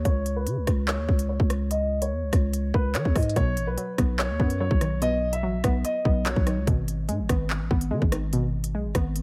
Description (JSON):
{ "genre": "hip hop, drill", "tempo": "145 BPM", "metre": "4/4", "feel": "half-time", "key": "unclear", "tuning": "A4 = 440 Hz", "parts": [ { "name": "dark grand piano", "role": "melody", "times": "0.0-6.6 s", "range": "B4 to E5", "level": "-32 LUFS", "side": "equal", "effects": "low-pass filter" }, { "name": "growling 808-style bass", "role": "bass", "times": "0.0-9.2 s", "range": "G#1 to E3", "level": "-29 LUFS", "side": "equal", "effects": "none" }, { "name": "drill drum kit", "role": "drums", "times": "0.1-9.2 s", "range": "handclaps, hi-hat, kick drum, rim click", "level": "-27 LUFS", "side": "equal", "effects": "none" }, { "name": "warbly dusty pluck", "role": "accompaniment", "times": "3.4-9.2 s", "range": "B2 to B3", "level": "-32 LUFS", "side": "equal", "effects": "chorus, low-pass filter" } ], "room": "little or no reverb", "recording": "none", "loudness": "-25 LUFS", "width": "mono", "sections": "0.0-9.2 A section", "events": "break 0.0-3.4; filter sweep 0.0-3.4", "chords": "0.0 N.C.; 3.4 B; 6.7 G#m", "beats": "| 0.05 0.47 0.88 1.29 | 1.71 2.12 2.54 2.95 | 3.36 3.78 4.19 4.60 | 5.02 5.43 5.85 6.26 | 6.67 7.09 7.50 7.92 | 8.33 8.74 9.16" }